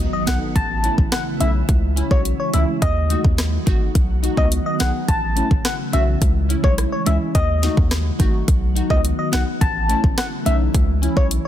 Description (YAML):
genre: dancehall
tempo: 106 BPM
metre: 4/4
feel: straight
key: C# minor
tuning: A4 = 440 Hz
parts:
  - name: glassy FM pad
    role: sustained chords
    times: 0.0-11.5 s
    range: C#3 to F#4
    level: -27 LUFS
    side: equal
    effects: ensemble chorus, built-in reverb, sidechain pumping
  - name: hard-hitting 808-style bass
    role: bass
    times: 0.0-11.4 s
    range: G#1 to D#2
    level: -20 LUFS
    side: equal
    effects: none
  - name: impact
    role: sound effects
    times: 0.0-1.7 s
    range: none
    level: -36 LUFS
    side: equal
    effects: none
  - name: soft struck synth lead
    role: melody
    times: 0.1-11.5 s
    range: C#5 to A5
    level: -24 LUFS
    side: left 2 dB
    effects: chorus, ping-pong delay
  - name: glassy wavetable pluck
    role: accompaniment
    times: 0.3-11.3 s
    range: G#3 to A4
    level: -27 LUFS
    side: left 1 dB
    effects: chorus, sidechain pumping
  - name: afro-pop drum kit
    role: drums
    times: 0.3-11.4 s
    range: hi-hat, kick drum, rim click, snare drum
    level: -20 LUFS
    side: equal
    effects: none
room: little or no reverb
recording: dense, heavily limited modern master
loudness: -16 LUFS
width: side -11 dB against mid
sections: 0.0-11.5 A section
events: impact 0.0-1.7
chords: 0.0 B; 0.6 A; 1.7 C#m; 2.8 D#dim; 4.0 B; 5.1 A; 6.2 C#m; 7.3 D#dim; 8.5 B; 9.6 A; 10.7 C#m